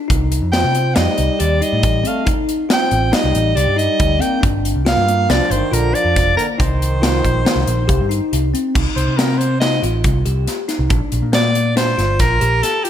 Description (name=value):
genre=progressive instrumental, band music in an uneven meter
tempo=139 BPM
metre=5/4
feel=straight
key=C dorian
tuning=A4 = 441 Hz
part: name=bell-like tine electric piano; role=arpeggios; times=0.0-12.9 s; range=Bb3 to G4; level=-23 LUFS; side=left 4 dB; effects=phaser, slapback echo, ping-pong delay
part: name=picked electric bass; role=bass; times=0.1-12.6 s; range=F1 to C3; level=-18 LUFS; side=equal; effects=none
part: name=big rock drum kit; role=drums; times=0.1-12.9 s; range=crash cymbal, hi-hat, kick drum, snare drum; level=-19 LUFS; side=equal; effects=none
part: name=breathy soprano saxophone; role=melody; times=0.5-12.9 s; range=G4 to G5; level=-19 LUFS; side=equal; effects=slapback echo
part: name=warm French horn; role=second line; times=0.5-8.3 s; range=D3 to C4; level=-24 LUFS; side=right 4 dB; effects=slapback echo
room=moderate lush hall reverb, RT60 1.6 s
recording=big arena sound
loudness=-14 LUFS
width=side -10 dB against mid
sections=0.0-8.7 A section; 8.7-12.9 B section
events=soprano saxophone solo 8.7-12.9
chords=0.1 Cm; 4.4 Gm7; 6.6 Cm7; 8.7 Cm; 10.9 Bb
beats=| 0.10 0.53 0.96 1.40 1.83 | 2.26 2.69 3.13 3.56 3.99 | 4.43 4.86 5.29 5.72 6.16 | 6.59 7.02 7.45 7.88 8.31 | 8.75 9.18 9.61 10.04 10.47 | 10.90 11.34 11.77 12.20 12.63